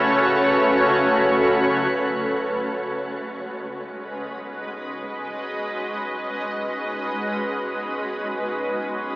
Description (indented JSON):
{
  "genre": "ambient",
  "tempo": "free time",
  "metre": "none",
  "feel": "none",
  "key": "unclear",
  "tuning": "A4 = 440 Hz",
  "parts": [
    { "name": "granular cloud pad", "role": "sustained chords", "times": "0.0-9.2 s", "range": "C#3 to D#5", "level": "-21 LUFS", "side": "equal", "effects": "built-in reverb, shimmer reverb" },
    { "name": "drifting glass-harmonics texture", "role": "texture", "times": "0.0-1.9 s", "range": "B4 to B5", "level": "-28 LUFS", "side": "equal", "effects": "chorus, built-in reverb, shimmer reverb" }
  ],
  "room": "wet huge ambient reverb, RT60 8.6 s",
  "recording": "AM radio sound",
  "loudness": "-21 LUFS",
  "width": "side -20 dB against mid",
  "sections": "0.0-1.9 A section; 1.9-9.2 B section",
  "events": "fade-in on ambient pad 1.9-9.2",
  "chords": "0.0 F#m/C#; 1.9 C#sus2"
}